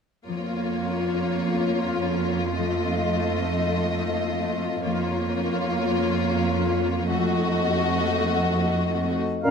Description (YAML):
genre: classical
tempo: 105 BPM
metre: 4/4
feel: rubato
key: Bb minor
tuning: A4 = 441 Hz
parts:
  - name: warm chamber violin section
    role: melody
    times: 0.3-9.2 s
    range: Db5 to Eb5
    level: -33 LUFS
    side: left 2 dB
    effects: none
  - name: warm symphonic violin section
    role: second line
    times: 0.3-9.2 s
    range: F4 to Gb4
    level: -28 LUFS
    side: left 4 dB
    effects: none
  - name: rich symphonic viola section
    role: accompaniment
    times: 0.3-9.2 s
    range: A3 to Bb3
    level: -29 LUFS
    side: right 3 dB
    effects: none
  - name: concert harp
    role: arpeggios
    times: 0.3-9.5 s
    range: Bb2 to F4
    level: -30 LUFS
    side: left 10 dB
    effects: none
  - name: clear symphonic cello section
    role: bass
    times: 0.3-9.2 s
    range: F2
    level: -27 LUFS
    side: right 4 dB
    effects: none
  - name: silver concert flute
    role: second line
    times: 9.4-9.5 s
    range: Bb5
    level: -31 LUFS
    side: left 1 dB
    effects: none
  - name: warm clarinet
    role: second line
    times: 9.4-9.5 s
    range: Db4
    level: -21 LUFS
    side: left 1 dB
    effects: none
  - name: warm oboe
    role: second line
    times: 9.4-9.5 s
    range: F5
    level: -26 LUFS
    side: right 1 dB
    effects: none
  - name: mellow bassoon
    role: accompaniment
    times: 9.4-9.5 s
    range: Bb2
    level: -23 LUFS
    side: right 3 dB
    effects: none
room: light reverb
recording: close, detailed microphones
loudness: -22 LUFS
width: side -6 dB against mid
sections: 0.3-9.4 A section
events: none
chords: 0.3 Bbm/F; 2.6 F7; 4.9 Bbm/F; 7.1 F7b9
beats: | 0.29 0.86 1.44 2.01 | 2.58 3.15 3.72 4.29 | 4.85 5.41 5.97 6.54 | 7.10 7.67 8.25 8.84 | 9.45